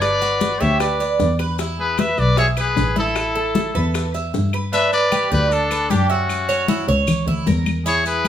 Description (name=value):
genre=latin, Cuban son and guajira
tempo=153 BPM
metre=4/4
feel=straight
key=unclear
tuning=A4 = 440 Hz
part: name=bright trumpet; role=melody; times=0.0-8.3 s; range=F#4 to E5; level=-21 LUFS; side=left 2 dB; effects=none
part: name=growling trumpet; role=second line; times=0.0-8.3 s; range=C#4 to C#5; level=-25 LUFS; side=left 2 dB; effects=none
part: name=Cuban tres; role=arpeggios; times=0.0-8.3 s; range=D4 to E5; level=-24 LUFS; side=right 5 dB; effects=none
part: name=warm double bass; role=bass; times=0.0-8.3 s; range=G1 to G2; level=-22 LUFS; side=left 1 dB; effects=none
part: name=bongos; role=percussion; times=0.0-4.7 s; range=none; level=-28 LUFS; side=left 4 dB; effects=none
part: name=claves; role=percussion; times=0.0-8.3 s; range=none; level=-32 LUFS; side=left 4 dB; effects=none
part: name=congas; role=percussion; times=0.0-8.3 s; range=none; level=-25 LUFS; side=left 3 dB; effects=none
part: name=maracas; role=percussion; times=0.0-8.3 s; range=none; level=-35 LUFS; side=left 5 dB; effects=none
room=moderate large studio reverb, RT60 1.2 s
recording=minimal, uncompressed stereo recording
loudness=-16 LUFS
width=side -10 dB against mid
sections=0.0-4.7 A section; 4.7-8.3 B section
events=none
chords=0.0 Gmaj7; 1.6 E; 3.2 Asus2; 4.7 G; 6.3 F#7